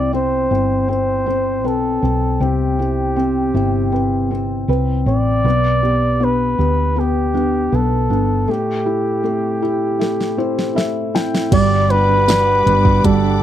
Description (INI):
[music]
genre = pop ballad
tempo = 79 BPM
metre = 4/4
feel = straight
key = G major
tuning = A4 = 440 Hz
[part]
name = breathy flugelhorn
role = melody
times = 0.0-13.4 s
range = G4 to D5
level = -19 LUFS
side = equal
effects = slapback echo
[part]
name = felt-muted upright piano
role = accompaniment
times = 0.0-13.4 s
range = G3 to G5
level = -20 LUFS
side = left 6 dB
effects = none
[part]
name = nylon-string guitar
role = arpeggios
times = 0.0-13.4 s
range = A2 to C5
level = -24 LUFS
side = right 15 dB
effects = none
[part]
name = woody fretless electric bass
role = bass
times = 0.0-13.4 s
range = G1 to D2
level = -19 LUFS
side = right 1 dB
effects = ensemble chorus
[part]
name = smooth R&B drum kit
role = drums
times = 10.0-13.2 s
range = crash cymbal, hi-hat, kick drum, snare drum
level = -19 LUFS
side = right 1 dB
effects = none
[part]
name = dark symphonic string section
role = sustained chords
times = 11.5-13.4 s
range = G3 to D6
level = -26 LUFS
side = equal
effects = none
[part]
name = tambourine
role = percussion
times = 12.3-12.5 s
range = none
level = -29 LUFS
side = right 20 dB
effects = none
[sound]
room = little or no reverb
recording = dry, close 1970s-style studio recording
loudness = -14 LUFS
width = side -11 dB against mid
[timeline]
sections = 0.0-11.5 A section; 11.5-13.4 B section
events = break 8.5-11.5; felt piano fill 10.0-11.5; drum fill 10.0-11.5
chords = 0.0 Cmaj7; 5.4 G/B; 8.5 Am7; 11.5 Gmaj7